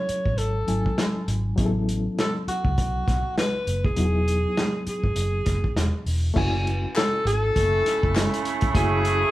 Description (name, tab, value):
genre	lush 1970s-style soul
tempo	100 BPM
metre	4/4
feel	swing 58% on 16ths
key	F# dorian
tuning	A4 = 440 Hz
part	breathy alto saxophone	melody	0.0-9.3 s	F#4 to C#5	-26 LUFS	equal	none
part	reed electric piano	accompaniment	0.0-9.3 s	F#3 to G#5	-30 LUFS	left 2 dB	fast tremolo
part	vintage muted fingered electric bass	bass	0.1-9.2 s	E1 to C#2	-25 LUFS	equal	none
part	vintage drum kit	drums	0.1-9.2 s	crash cymbal, hi-hat, kick drum, snare drum	-26 LUFS	equal	none
part	group handclap	percussion	7.0-8.3 s	none	-35 LUFS	left 3 dB	none
part	mellow horn section	stabs	7.6-9.3 s	C#3 to E4	-27 LUFS	right 4 dB	none
room	moderate large studio reverb, RT60 1.2 s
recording	band playing live in one room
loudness	-21 LUFS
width	side -16 dB against mid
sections	0.0-6.4 A section; 6.4-9.3 B section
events	none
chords	0.0 F#m9; 1.6 A69; 4.0 Emaj7; 6.4 F#m9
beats	0.38 0.98 | 1.58 2.18 2.78 3.37 | 3.97 4.57 5.17 5.76 | 6.36 6.96 7.55 8.15 | 8.74